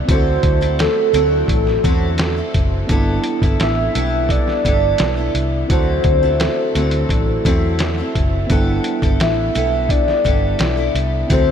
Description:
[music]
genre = indie pop, bedroom pop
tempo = 86 BPM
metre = 4/4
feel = straight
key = G major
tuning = A4 = 440 Hz
[part]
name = mellow tine electric piano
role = accompaniment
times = 0.0-11.5 s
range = B3 to A4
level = -25 LUFS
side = right 3 dB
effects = medium stereo tremolo, cassette tape
[part]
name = picked steel-string acoustic guitar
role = accompaniment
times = 0.0-11.5 s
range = D3 to A4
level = -24 LUFS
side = left 2 dB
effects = lush chorus, warbly pitch drift
[part]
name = soft octave-layered synth lead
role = melody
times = 0.1-11.5 s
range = A4 to E5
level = -20 LUFS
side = equal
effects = phaser, wide subtle chorus, tape echo
[part]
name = vintage muted fingered electric bass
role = bass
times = 0.1-11.5 s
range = F#1 to E2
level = -20 LUFS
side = equal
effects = none
[part]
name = lo-fi sampler-style drum kit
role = drums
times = 0.1-11.5 s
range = hi-hat, kick drum, snare drum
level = -20 LUFS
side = equal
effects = none
[sound]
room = moderate huge ambient reverb, RT60 8.1 s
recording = dreamy mix soaked in reverb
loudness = -14 LUFS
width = side -8 dB against mid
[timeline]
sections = 0.0-11.5 A section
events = none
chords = 0.1 D9; 2.9 G69; 5.7 D9; 8.5 G69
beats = | 0.09 0.79 1.49 2.19 | 2.89 3.60 4.30 5.00 | 5.70 6.40 7.10 7.80 | 8.50 9.20 9.90 10.60 | 11.30

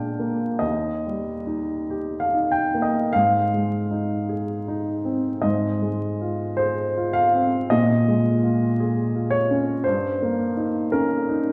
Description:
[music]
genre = classical, romantic nocturne for solo piano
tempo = 46-58 BPM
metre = 4/4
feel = rubato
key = unclear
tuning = A4 = 440 Hz
[part]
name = warm upright piano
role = solo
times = 0.0-11.5 s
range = Eb2 to G5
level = -23 LUFS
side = equal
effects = none
[sound]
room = wet recital hall reverb, RT60 1.7 s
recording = heard from further back in the room, vinyl crackle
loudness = -23 LUFS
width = mono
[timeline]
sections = 0.0-11.5 A section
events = none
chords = 0.0 Bb7; 0.6 Eb; 3.1 Ab; 7.7 Bbm7; 9.8 Eb7/G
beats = 0.63 1.91 | 3.14 4.29 5.43 6.59 | 7.73 8.80 9.85 10.92

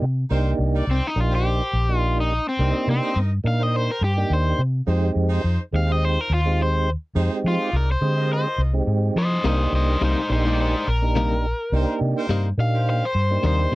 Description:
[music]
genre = blues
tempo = 105 BPM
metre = 4/4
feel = swing 55% on 16ths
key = C minor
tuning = A4 = 440 Hz
[part]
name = tonewheel organ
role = accompaniment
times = 0.0-13.8 s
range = Ab3 to Eb5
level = -26 LUFS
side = right 3 dB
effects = slow rotary speaker, overdrive
[part]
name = vintage muted fingered electric bass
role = bass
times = 0.0-13.8 s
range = Bb1 to F3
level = -21 LUFS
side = equal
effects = none
[part]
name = clear horn section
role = sustained chords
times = 0.3-13.3 s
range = Eb4 to Eb5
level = -34 LUFS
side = equal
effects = none
[part]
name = overdriven electric guitar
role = melody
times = 0.9-13.8 s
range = C4 to F5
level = -24 LUFS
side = left 1 dB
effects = none
[part]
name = direct-recorded clean electric guitar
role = stabs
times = 9.4-13.8 s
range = C3 to Eb4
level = -25 LUFS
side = left 4 dB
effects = tremolo
[sound]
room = little or no reverb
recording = dry, close 1970s-style studio recording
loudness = -19 LUFS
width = side -19 dB against mid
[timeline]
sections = 0.0-13.8 A section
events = overdriven electric guitar solo 0.0-13.8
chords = 0.0 Cm7; 4.9 Fm7; 9.4 Cm7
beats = | 0.31 0.88 1.45 2.02 | 2.60 3.17 3.74 4.31 | 4.88 5.45 6.02 6.59 | 7.16 7.73 8.30 8.87 | 9.44 10.02 10.59 11.16 | 11.73 12.30 12.87 13.44

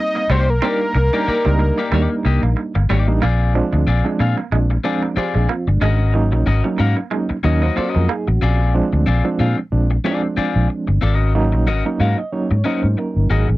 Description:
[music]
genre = funk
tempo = 92 BPM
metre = 4/4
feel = swing 56% on 16ths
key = Bb mixolydian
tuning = A4 = 442 Hz
[part]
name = fat analog lead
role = melody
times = 0.0-2.6 s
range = Bb4 to Eb5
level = -20 LUFS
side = equal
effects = none
[part]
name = overdriven reed electric piano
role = stabs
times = 0.0-13.6 s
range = F3 to F5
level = -21 LUFS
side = right 3 dB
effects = fast tremolo
[part]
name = electric guitar at the edge of break-up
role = accompaniment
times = 0.2-13.5 s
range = Bb3 to F5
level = -23 LUFS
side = left 5 dB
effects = none
[part]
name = clean electric guitar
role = riff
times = 0.2-8.2 s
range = Gb3 to Db4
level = -27 LUFS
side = right 7 dB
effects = tremolo
[part]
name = vintage muted fingered electric bass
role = bass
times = 0.3-13.6 s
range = G1 to Bb2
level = -16 LUFS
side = equal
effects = none
[sound]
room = little or no reverb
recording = dry, close 1970s-style studio recording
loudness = -15 LUFS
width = side -18 dB against mid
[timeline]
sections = 0.0-3.2 A section; 3.2-13.6 B section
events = reed electric piano fill 7.1-8.4, 11.7-13.6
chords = 0.0 Cm9; 3.2 Bb9; 5.8 Ab9sus4; 8.4 Bb9; 11.0 Ab9sus4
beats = | 0.63 1.28 1.93 2.58 | 3.23 3.87 4.52 5.17 | 5.82 6.47 7.12 7.77 | 8.42 9.07 9.72 10.37 | 11.03 11.68 12.33 12.98

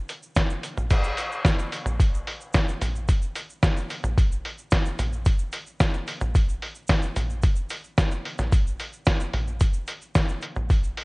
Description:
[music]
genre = pop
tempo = 110 BPM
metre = 4/4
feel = straight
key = none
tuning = none
[part]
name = lo-fi sampler-style drum kit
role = drums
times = 0.1-11.0 s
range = crash cymbal, hi-hat, kick drum, snare drum, toms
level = -22 LUFS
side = equal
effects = none
[part]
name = tube shaker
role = percussion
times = 0.1-11.0 s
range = none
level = -46 LUFS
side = right 2 dB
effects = none
[sound]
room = light reverb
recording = worn, warbling old tape, cassette tape, warbly pitch drift, nothing above 10.3 kHz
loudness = -22 LUFS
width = side -29 dB against mid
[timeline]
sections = 0.9-11.0 A section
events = none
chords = none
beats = 0.36 | 0.91 1.45 2.00 2.54 | 3.08 3.63 4.17 4.72 | 5.26 5.80 6.35 6.89 | 7.44 7.98 8.52 9.07 | 9.61 10.16 10.70

